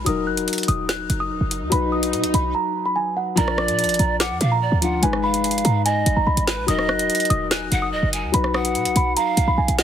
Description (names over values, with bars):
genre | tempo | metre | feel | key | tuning
hip hop, drill | 145 BPM | 4/4 | half-time | Eb harmonic minor | A4 = 440 Hz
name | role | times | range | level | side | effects
small celesta | melody | 0.0-9.8 s | F#5 to Gb6 | -24 LUFS | right 2 dB | none
dark concert grand piano | accompaniment | 0.0-9.8 s | F3 to B4 | -26 LUFS | left 6 dB | none
short 808-style bass | bass | 0.0-9.8 s | D1 to B2 | -23 LUFS | equal | none
drill drum kit | drums | 0.1-9.8 s | hi-hat, rim click, snare drum | -24 LUFS | right 1 dB | none
swell | sound effects | 1.0-2.5 s | none | -30 LUFS | right 1 dB | none
breathy mellow pan flute | second line | 3.4-9.8 s | Cb5 to Ab5 | -24 LUFS | right 3 dB | tape echo
room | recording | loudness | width
little or no reverb | heavily compressed radio sound, multiband compression | -18 LUFS | side -9 dB against mid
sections
0.0-3.4 A section; 3.4-9.8 B section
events
swell 1.0-3.4; break 2.5-3.4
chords
0.1 Ebm; 1.7 B; 3.4 Bb; 5.0 Abm; 6.7 Ebm; 8.3 B